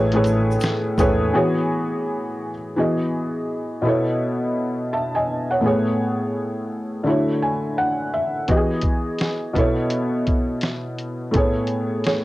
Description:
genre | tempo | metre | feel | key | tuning
lo-fi hip hop | 84 BPM | 4/4 | swing 63% on 16ths | E major | A4 = 440 Hz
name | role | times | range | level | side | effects
felt-muted upright piano | accompaniment | 0.0-12.2 s | A2 to A5 | -20 LUFS | equal | cassette tape, low-pass filter
vintage muted fingered electric bass | bass | 0.0-1.3 s | A1 to E2 | -25 LUFS | equal | none
lo-fi sampler-style drum kit | drums | 0.1-1.2, 8.5-12.2 s | hi-hat, kick drum, snare drum | -23 LUFS | equal | vintage 12-bit sampler grit
tube shaker | percussion | 0.3-1.2 s | none | -45 LUFS | right 6 dB | none
room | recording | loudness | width
light reverb | home recording on cassette | -19 LUFS | side -17 dB against mid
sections
0.0-2.8 A section; 2.8-12.2 B section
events
break 1.3-2.8; felt piano fill 7.1-8.5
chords
0.0 Amaj9; 1.3 E69; 2.8 Emaj7; 3.8 B9sus4; 5.6 Amaj9; 7.1 Dmaj9; 8.5 Emaj7; 9.6 B9sus4; 11.3 Amaj9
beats
0.63 1.34 2.06 | 2.77 3.48 4.20 4.91 | 5.63 6.34 7.06 7.77 | 8.48 9.20 9.91 10.63 | 11.34 12.06

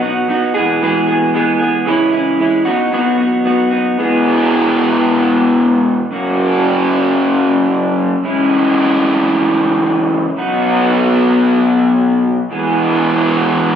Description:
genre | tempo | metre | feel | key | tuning
rock | 113 BPM | 4/4 | straight | unclear | A4 = 438 Hz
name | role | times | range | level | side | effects
raw garage guitar | solo | 0.0-13.8 s | E2 to G#4 | -11 LUFS | equal | overdrive, analog delay
room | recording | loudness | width
light reverb | recorded on a phone in the room, studio reverb, compression | -11 LUFS | side -8 dB against mid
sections
0.0-4.0 A section; 4.0-13.8 B section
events
none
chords
0.0 B; 0.6 E/B; 1.9 C#m; 2.7 B; 4.0 E; 6.1 F#; 8.2 C#m; 10.4 B; 12.5 E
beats
0.30 0.82 1.35 | 1.88 2.41 2.94 3.46 | 3.99 4.52 5.05 5.58 | 6.12 6.65 7.18 7.71 | 8.24 8.78 9.31 9.84 | 10.37 10.90 11.43 11.96 | 12.50 13.03 13.56

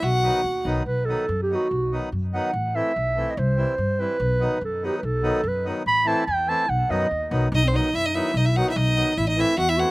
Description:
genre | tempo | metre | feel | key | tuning
balkan folk, Balkan wedding band | 144 BPM | 2/4 | swing 56% on 16ths | B phrygian dominant | A4 = 441 Hz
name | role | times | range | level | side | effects
clear violin | melody | 0.0-0.7, 7.5-9.9 s | C5 to F#5 | -24 LUFS | equal | none
mellow clarinet | second line | 0.0-9.9 s | C4 to B5 | -24 LUFS | right 2 dB | none
upright bass | bass | 0.0-9.8 s | A1 to G2 | -25 LUFS | equal | none
accordion | accompaniment | 0.2-9.9 s | D#3 to E4 | -28 LUFS | left 1 dB | none
room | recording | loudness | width
little or no reverb | recorded outdoors, with no room sound | -20 LUFS | side -21 dB against mid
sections
0.9-7.5 A section; 7.5-9.9 B section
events
clarinet solo 0.9-7.5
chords
0.0 B; 2.5 Am; 3.4 C; 4.2 B; 5.9 Am; 6.7 B; 9.2 Am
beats
| 0.02 0.44 | 0.86 1.28 | 1.70 2.12 | 2.54 2.95 | 3.37 3.79 | 4.20 4.62 | 5.04 5.45 | 5.87 6.28 | 6.69 7.11 | 7.52 7.93 | 8.34 8.76 | 9.17 9.58

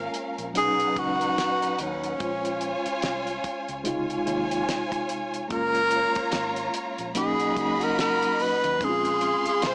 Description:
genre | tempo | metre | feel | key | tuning
lush 1970s-style soul | 73 BPM | 4/4 | swing 58% on 16ths | unclear | A4 = 439 Hz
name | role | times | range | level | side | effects
breathy tenor saxophone | melody | 0.0-9.7 s | Db4 to C5 | -25 LUFS | equal | tape echo
warm studio violin section | second line | 0.0-9.7 s | Db4 to C6 | -29 LUFS | equal | none
mellow reed electric piano | accompaniment | 0.0-9.7 s | Bb2 to C5 | -30 LUFS | equal | fast tremolo
vintage muted fingered electric bass | bass | 0.0-9.7 s | Gb1 to Eb2 | -41 LUFS | equal | none
damped 70s drum kit | drums | 0.1-9.7 s | hi-hat, kick drum, snare drum | -33 LUFS | equal | none
room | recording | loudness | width
light reverb, studio reverb | small speaker sound | -23 LUFS | side -33 dB against mid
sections
0.0-9.7 A section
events
none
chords
0.0 Gbmaj9 (rootless); 0.6 Cbmaj7; 2.2 Bbm9; 3.9 Dbmaj7; 5.5 Gbmaj9; 7.2 Cbmaj7; 8.8 Bbm9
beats
0.56 1.38 | 2.21 3.03 3.86 4.68 | 5.51 6.33 7.16 7.98 | 8.81 9.63

